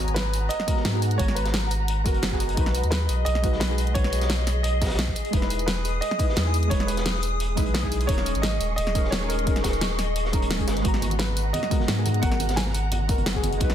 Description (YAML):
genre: liquid drum and bass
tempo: 174 BPM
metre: 4/4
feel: straight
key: G# minor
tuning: A4 = 440 Hz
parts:
  - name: deep mellow chord stab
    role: accompaniment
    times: 0.0-13.7 s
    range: G#3 to A#5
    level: -30 LUFS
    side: right 1 dB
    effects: chorus
  - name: glassy FM pad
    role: sustained chords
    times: 0.0-13.7 s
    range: G#4 to D#6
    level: -32 LUFS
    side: left 2 dB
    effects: ensemble chorus, built-in reverb, sidechain pumping
  - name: warm sub bass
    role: bass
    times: 0.0-13.7 s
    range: D#1 to G#2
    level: -26 LUFS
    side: equal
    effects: none
  - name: sub drop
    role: sound effects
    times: 0.0-1.2 s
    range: none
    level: -44 LUFS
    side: right 1 dB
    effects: none
  - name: clear grand piano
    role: melody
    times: 0.1-13.4 s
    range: A#4 to G#5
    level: -32 LUFS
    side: right 3 dB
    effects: ping-pong delay
  - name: pop drum kit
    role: drums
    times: 0.1-13.7 s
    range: hi-hat, snare drum, tambourine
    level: -29 LUFS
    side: equal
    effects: studio reverb
  - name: crunchy breakbeat drum kit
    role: drums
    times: 0.2-13.7 s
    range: hi-hat, snare drum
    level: -37 LUFS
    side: equal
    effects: high-pass filter on hats, studio reverb, high-pass filter on snare, high-pass filter on room
  - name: electronic kick drum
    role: drums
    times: 0.7-13.7 s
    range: none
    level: -25 LUFS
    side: equal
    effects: studio reverb
  - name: congas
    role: percussion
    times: 11.0-13.5 s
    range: none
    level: -34 LUFS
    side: right 2 dB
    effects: none
room: studio reverb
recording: dense, heavily limited modern master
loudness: -22 LUFS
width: side -10 dB against mid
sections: 0.0-13.7 A section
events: impact 0.0-1.2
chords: 0.0 G#m9; 2.6 B6; 5.3 Emaj7; 8.1 D#7sus4; 10.8 G#m9